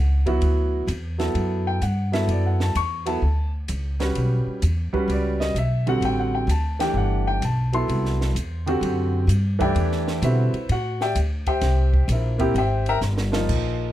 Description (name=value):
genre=modal jazz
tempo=129 BPM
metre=4/4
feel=swing 67% on 8ths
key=B phrygian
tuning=A4 = 440 Hz
part: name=warm grand piano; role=accompaniment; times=0.0-13.9 s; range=D3 to C#6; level=-24 LUFS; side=equal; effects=none
part: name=upright bass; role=bass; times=0.0-13.9 s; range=G1 to B2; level=-22 LUFS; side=equal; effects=none
part: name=compact cocktail drum kit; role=drums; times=0.3-13.6 s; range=crash cymbal, hi-hat, kick drum, ride cymbal, snare drum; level=-32 LUFS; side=right 1 dB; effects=none
room=little or no reverb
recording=close, detailed microphones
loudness=-20 LUFS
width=side -13 dB against mid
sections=0.0-13.5 A section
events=drum fill 13.0-13.5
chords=0.0 Bm11; 6.0 Am11; 11.6 C7